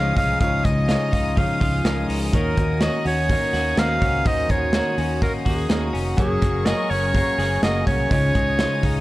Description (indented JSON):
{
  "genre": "jangly indie pop",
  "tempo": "125 BPM",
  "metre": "4/4",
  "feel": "straight",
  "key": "unclear",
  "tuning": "A4 = 440 Hz",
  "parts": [
    { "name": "clear clarinet", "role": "melody", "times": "0.0-9.0 s", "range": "Ab4 to F5", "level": "-24 LUFS", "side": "right 1 dB", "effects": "none" },
    { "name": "clear upright piano", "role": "accompaniment", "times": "0.0-9.0 s", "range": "Eb4 to Eb5", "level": "-31 LUFS", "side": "equal", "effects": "none" },
    { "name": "picked twelve-string acoustic guitar", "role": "accompaniment", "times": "0.0-9.0 s", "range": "Db3 to Ab4", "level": "-32 LUFS", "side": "right 6 dB", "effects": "none" },
    { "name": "warm studio string section", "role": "sustained chords", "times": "0.0-9.0 s", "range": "Db4 to Eb6", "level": "-34 LUFS", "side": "left 2 dB", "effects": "none" },
    { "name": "twelve-string electric guitar", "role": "arpeggios", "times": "0.0-9.0 s", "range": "Db3 to Ab4", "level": "-26 LUFS", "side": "left 3 dB", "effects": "none" },
    { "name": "fingered electric bass", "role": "bass", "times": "0.0-9.0 s", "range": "F1 to Eb2", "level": "-25 LUFS", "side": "equal", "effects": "none" },
    { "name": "modern studio drum kit", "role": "drums", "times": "0.2-8.9 s", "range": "hi-hat, kick drum, snare drum", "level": "-23 LUFS", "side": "equal", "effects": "none" }
  ],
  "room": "little or no reverb",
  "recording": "none",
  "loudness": "-18 LUFS",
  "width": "side -17 dB against mid",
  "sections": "0.0-9.0 A section",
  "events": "none",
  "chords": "0.0 Dbadd9; 2.3 Ebm7; 6.2 Gbadd9; 8.1 Dbadd9",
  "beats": "| 0.41 0.89 1.37 1.85 | 2.33 2.81 3.29 3.78 | 4.26 4.74 5.22 5.70 | 6.18 6.67 7.15 7.63 | 8.11 8.59"
}